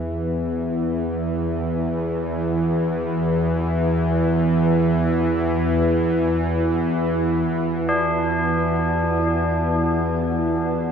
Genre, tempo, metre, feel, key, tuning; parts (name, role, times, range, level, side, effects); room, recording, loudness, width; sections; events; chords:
dark ambient drone; free time; A4 = 440 Hz
deep dark ambient pad; sustained chords; 0.0-10.9 s; E4 to F#5; -28 LUFS; right 2 dB; chorus, built-in reverb, shimmer reverb
bowed-like drone; drone; 0.0-10.9 s; E2 to E3; -20 LUFS; equal; built-in reverb
tubular bells; arpeggios; 7.9-10.9 s; D4; -23 LUFS; left 1 dB; diffuse ambient delay, shimmer reverb
wet cathedral reverb, RT60 5.4 s; in a vast, echoing space, cassette tape; -19 LUFS; side -7 dB against mid
0.0-10.9 A section
fade-in on ambient pad 0.0-10.9; fade-in on tubular bells 0.0-10.9
0.0 Esus2